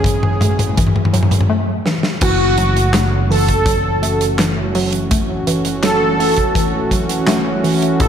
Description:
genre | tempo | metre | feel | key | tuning
synthwave | 83 BPM | 4/4 | straight | F# minor | A4 = 440 Hz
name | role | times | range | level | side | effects
warm analog pad | sustained chords | 0.0-8.1 s | E3 to G#4 | -21 LUFS | right 2 dB | chorus, sidechain pumping
picked electric bass | bass | 0.0-8.1 s | F#1 to A1 | -21 LUFS | equal | none
big rock drum kit | drums | 0.0-8.1 s | crash cymbal, handclaps, hi-hat, snare drum, toms | -18 LUFS | equal | none
kick drum | drums | 0.0-8.1 s | none | -20 LUFS | equal | none
warbly dusty pluck | arpeggios | 0.1-8.1 s | E3 to A3 | -22 LUFS | left 1 dB | chorus, cassette tape, digital delay
soft supersaw | melody | 2.2-8.1 s | F#4 to A4 | -18 LUFS | equal | digital delay
FM electric piano with soft pad layer | second line | 2.2-8.1 s | F#4 to A4 | -26 LUFS | right 3 dB | none
room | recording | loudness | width
moderate lush hall reverb, RT60 1.8 s, small room reverb | none | -13 LUFS | side -8 dB against mid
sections
0.0-2.2 A section; 2.2-8.1 B section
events
drum fill 0.0-1.5, 1.9-2.2; filter sweep on synth arpeggio sound 0.0-2.2; break 1.5-2.2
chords
0.0 A6; 2.2 F#m7

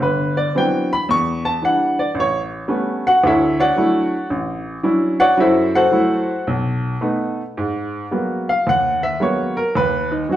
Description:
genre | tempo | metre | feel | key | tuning
solo jazz | 111 BPM | 4/4 | swing 67% on 8ths, rubato | unclear | A4 = 439 Hz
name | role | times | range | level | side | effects
warm upright piano | solo | 0.0-10.4 s | G1 to C#6 | -16 LUFS | equal | none
room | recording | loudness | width
wet club reverb, RT60 0.9 s | heard from further back in the room | -16 LUFS | side -12 dB against mid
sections
0.0-7.6 A section; 7.6-10.4 A section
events
upright piano solo 0.0-7.6, 7.6-10.4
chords
0.0 Cmaj9#11; 1.1 Em7; 2.2 A9; 3.2 Dmaj9; 5.4 F#m7b5; 6.5 B7; 7.6 G#m9; 9.7 D#7(no3)

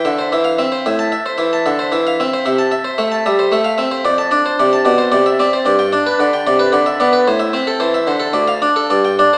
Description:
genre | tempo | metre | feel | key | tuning
classical, baroque-style suite movement for harpsichord | 112 BPM | 3/4 | rubato | unclear | A4 = 440 Hz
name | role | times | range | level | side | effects
harpsichord | solo | 0.0-9.4 s | D2 to A5 | -12 LUFS | equal | none
room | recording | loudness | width
wet scoring stage reverb, RT60 1.6 s | recorded in a church or concert hall, small speaker sound | -12 LUFS | side -35 dB against mid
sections
0.0-9.4 A section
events
none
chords
0.0 C; 0.8 Am; 2.5 Am/C; 4.1 Dm7/F; 5.7 G; 7.3 Am; 8.3 Dm

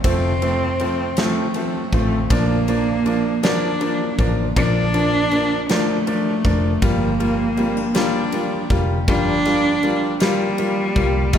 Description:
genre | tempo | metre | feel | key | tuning
six-eight pop ballad | 53 BPM (dotted quarters) | 6/8 | straight | unclear | A4 = 440 Hz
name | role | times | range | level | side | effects
rich cello | melody | 0.0-11.4 s | G3 to D4 | -21 LUFS | right 1 dB | none
clear concert grand piano | accompaniment | 0.0-11.4 s | F3 to F4 | -22 LUFS | left 1 dB | none
picked steel-string acoustic guitar | arpeggios | 0.0-11.4 s | F3 to G4 | -28 LUFS | left 4 dB | none
vintage muted fingered electric bass | bass | 0.0-11.4 s | F1 to Eb2 | -24 LUFS | equal | none
huge arena drum kit | drums | 0.0-11.4 s | kick drum, ride cymbal, snare drum | -24 LUFS | equal | none
room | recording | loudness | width
moderate concert hall reverb, RT60 1.9 s | recorded in a church or concert hall | -17 LUFS | side -9 dB against mid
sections
0.0-11.4 A section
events
none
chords
0.0 F; 2.3 Bb; 6.8 Gm7

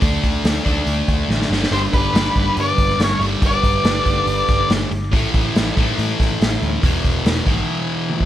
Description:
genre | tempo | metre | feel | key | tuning
blues rock power trio and southern rock | 141 BPM | 4/4 | straight | unclear | A4 = 440 Hz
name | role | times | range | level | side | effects
sludgy distorted guitar | riff | 0.0-8.3 s | E2 to D4 | -21 LUFS | equal | overdrive
vintage muted picked electric bass | bass | 0.0-7.6 s | E1 to A2 | -23 LUFS | equal | none
raw garage drum kit | drums | 0.0-8.3 s | hi-hat, kick drum, snare drum, toms | -19 LUFS | equal | none
octave-fuzz lead guitar | melody | 1.7-4.7 s | B4 to D5 | -20 LUFS | left 2 dB | distortion
lead guitar through a small cranked amp | second line | 1.7-4.7 s | G4 to B4 | -27 LUFS | right 5 dB | overdrive
room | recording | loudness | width
little or no reverb | none | -15 LUFS | side -12 dB against mid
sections
0.0-8.3 A section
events
drum fill 1.3-1.7; break 7.7-8.3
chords
0.0 D5; 1.5 G; 5.1 A5; 6.8 E5

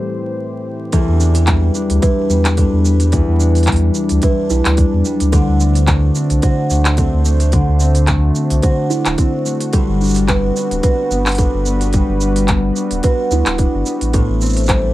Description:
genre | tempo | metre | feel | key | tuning
folktronica | 109 BPM | 4/4 | swing 56% on 16ths | unclear | A4 = 439 Hz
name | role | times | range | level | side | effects
warm analog pad | sustained chords | 0.0-14.9 s | E3 to C5 | -24 LUFS | right 1 dB | chorus, plate reverb
concert harp | arpeggios | 0.0-14.9 s | E2 to G4 | -18 LUFS | left 2 dB | digital delay, plate reverb
buzzing kalimba | second line | 0.9-14.9 s | E4 to C5 | -23 LUFS | right 4 dB | digital delay, plate reverb
electronic kick drum | drums | 0.9-14.8 s | none | -16 LUFS | equal | none
organic electronic drum kit | drums | 0.9-14.8 s | cabasa, handclaps, hi-hat | -22 LUFS | right 1 dB | none
warm sub bass | bass | 1.1-14.9 s | D1 to E2 | -15 LUFS | equal | none
room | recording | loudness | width
light reverb | vinyl crackle | -12 LUFS | side -16 dB against mid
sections
0.9-14.9 A section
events
break 0.0-0.9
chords
0.0 Am7; 0.9 Em7; 5.3 D7; 9.7 Gmaj7; 14.1 Am7

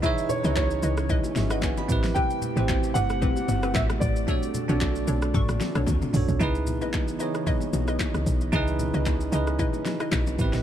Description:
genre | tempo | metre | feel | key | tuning
amapiano | 113 BPM | 4/4 | swing 55% on 16ths | unclear | A4 = 437 Hz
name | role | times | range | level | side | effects
warm concert grand piano | melody | 0.0-5.8 s | C#5 to G5 | -31 LUFS | right 1 dB | ping-pong delay
bell-like tine electric piano | accompaniment | 0.0-10.6 s | B3 to B5 | -30 LUFS | right 5 dB | none
airy breathy pad | sustained chords | 0.0-10.6 s | C3 to D#5 | -34 LUFS | equal | chorus
hollow square pluck | stabs | 0.0-10.1 s | C4 to C#6 | -34 LUFS | left 5 dB | chorus, ping-pong delay
woody log drum bass | bass | 0.0-10.6 s | G1 to D2 | -26 LUFS | equal | none
deep house drum kit | drums | 0.0-10.6 s | handclaps, hi-hat, kick drum, rim click, shaker, snare drum, toms | -28 LUFS | equal | none
congas and bongos | percussion | 0.0-10.4 s | none | -34 LUFS | left 5 dB | none
room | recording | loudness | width
little or no reverb | dark, warm production | -22 LUFS | side -10 dB against mid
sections
0.0-6.4 A section; 6.4-10.6 B section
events
drop 0.0-6.4; drum fill 5.9-6.4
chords
0.0 C#m9; 1.9 Am9; 4.3 Bm9; 6.4 C#m9

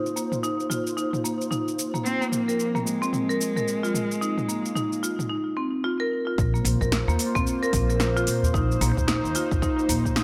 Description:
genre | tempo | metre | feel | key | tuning
organic downtempo | 111 BPM | 4/4 | swing 60% on 16ths | unclear | A4 = 440 Hz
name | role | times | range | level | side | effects
airy breathy pad | sustained chords | 0.0-10.2 s | F3 to C5 | -34 LUFS | equal | chorus, sidechain pumping
marimba with medium hard mallets | arpeggios | 0.0-10.2 s | Bb3 to Bb4 | -29 LUFS | equal | low-pass filter, delay
deep house drum kit | drums | 0.1-10.2 s | hi-hat, shaker, snare drum, toms | -32 LUFS | equal | overdrive
dark cello | melody | 2.0-5.3 s | Ab3 to C4 | -31 LUFS | equal | delay
upright bass | bass | 6.4-10.2 s | Bb1 to Bb2 | -28 LUFS | equal | none
electronic kick drum | drums | 6.4-10.1 s | none | -30 LUFS | equal | overdrive
udu | percussion | 6.8-10.0 s | none | -32 LUFS | equal | none
room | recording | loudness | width
moderate lush hall reverb, RT60 1.9 s, studio reverb | none | -25 LUFS | mono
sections
0.0-6.4 A section; 6.4-10.2 B section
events
none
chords
0.0 Bb5; 2.1 Fm; 6.4 Bb5

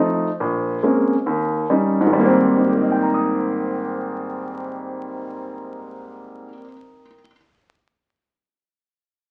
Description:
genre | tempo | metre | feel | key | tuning
jazz | 138 BPM | 4/4 | swing 68% on 8ths | Ab major | A4 = 440 Hz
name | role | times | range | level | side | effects
warm grand piano | accompaniment | 0.0-7.4 s | Bb1 to Eb6 | -21 LUFS | equal | none
room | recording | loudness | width
wet large studio reverb, RT60 1.0 s | very old 78 rpm record, vinyl crackle | -20 LUFS | mono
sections
0.0-2.1 A section; 2.1-5.6 B section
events
none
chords
0.4 Bbm9; 1.3 Eb7; 2.1 Abmaj7

